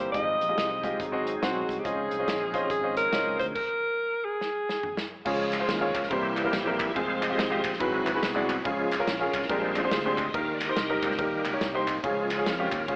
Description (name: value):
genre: uptempo gospel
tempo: 141 BPM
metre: 4/4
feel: swing 63% on 8ths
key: unclear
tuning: A4 = 440 Hz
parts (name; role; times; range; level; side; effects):
- warm alto saxophone; melody; 0.0-5.1 s; Gb4 to Eb5; -28 LUFS; equal; none
- bright tonewheel organ; sustained chords; 0.0-13.0 s; E3 to F5; -30 LUFS; equal; slow rotary speaker, chorus vibrato
- fingered electric bass; bass; 0.0-13.0 s; F1 to F2; -40 LUFS; equal; none
- warm baby grand piano; accompaniment; 0.1-13.0 s; Ab2 to Eb5; -29 LUFS; equal; none
- natural country drum kit; drums; 0.1-13.0 s; crash cymbal, hi-hat, kick drum, ride cymbal, snare drum, toms; -34 LUFS; equal; none
- group handclap; percussion; 5.5-12.8 s; none; -36 LUFS; equal; none
room: moderate concert hall reverb, RT60 2.1 s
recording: AM radio sound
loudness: -25 LUFS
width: side -33 dB against mid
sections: 0.0-5.3 A section; 5.3-13.0 B section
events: stop 3.6-5.3; drum fill 4.4-5.3; tonewheel organ solo 5.3-13.0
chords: 0.1 Fm9/Ab; 1.0 Ab7; 1.8 Dbmaj9; 3.6 N.C.; 5.3 Db; 6.1 C7; 7.0 Fm; 7.8 Ab7alt; 8.7 Db; 9.5 Bb13; 10.3 Eb; 12.0 Db